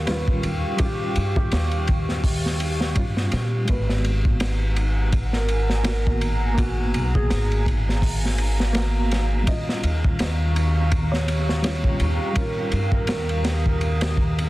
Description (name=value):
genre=trip hop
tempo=83 BPM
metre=4/4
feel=swing 57% on 16ths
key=G# dorian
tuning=A4 = 438 Hz
part: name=felt-muted upright piano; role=melody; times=0.0-13.4 s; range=F#4 to D#5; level=-32 LUFS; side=right 1 dB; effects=tape echo
part: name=bright reed electric piano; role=accompaniment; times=0.0-14.5 s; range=G3 to F#4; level=-31 LUFS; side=equal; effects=overdrive, tremolo, vintage 12-bit sampler grit, tape echo
part: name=deep dark ambient pad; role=sustained chords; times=0.0-14.5 s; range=G4 to D#6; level=-32 LUFS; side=equal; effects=chorus, built-in reverb
part: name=upright bass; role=bass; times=0.0-14.5 s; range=G#1 to A#2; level=-23 LUFS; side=equal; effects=none
part: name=crunchy breakbeat drum kit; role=drums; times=0.1-14.5 s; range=hi-hat, kick drum, ride cymbal, snare drum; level=-24 LUFS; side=equal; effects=none
part: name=flickering grainy texture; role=texture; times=4.8-14.5 s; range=B3 to A#5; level=-38 LUFS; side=right 1 dB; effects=built-in reverb
room=small room ambience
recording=dense, heavily limited modern master, vinyl crackle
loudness=-20 LUFS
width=side -18 dB against mid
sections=0.0-14.5 A section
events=none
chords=0.0 D#9; 3.7 G#m9; 9.5 D#9